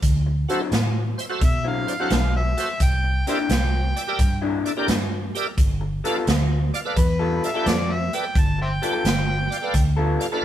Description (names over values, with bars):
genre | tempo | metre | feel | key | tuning
electric blues shuffle | 86 BPM | 4/4 | swing 68% on 8ths | G mixolydian | A4 = 440 Hz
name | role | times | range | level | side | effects
vintage muted fingered electric bass | bass | 0.0-10.2 s | G1 to B2 | -23 LUFS | equal | none
swinging big-band drum kit | drums | 0.0-10.3 s | hi-hat, kick drum, snare drum | -23 LUFS | right 1 dB | none
electric guitar through a small old amp | riff | 0.3-10.4 s | C3 to A4 | -26 LUFS | left 4 dB | none
bright tonewheel organ | accompaniment | 0.5-10.4 s | F#4 to G5 | -26 LUFS | right 2 dB | overdrive, chorus vibrato, slow rotary speaker
overdriven harmonica | melody | 1.4-10.0 s | B4 to A5 | -27 LUFS | equal | none
room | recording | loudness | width
light reverb | band playing live in one room | -19 LUFS | side -11 dB against mid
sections
0.0-10.4 A section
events
none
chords
0.0 D9; 2.8 C9; 5.6 G9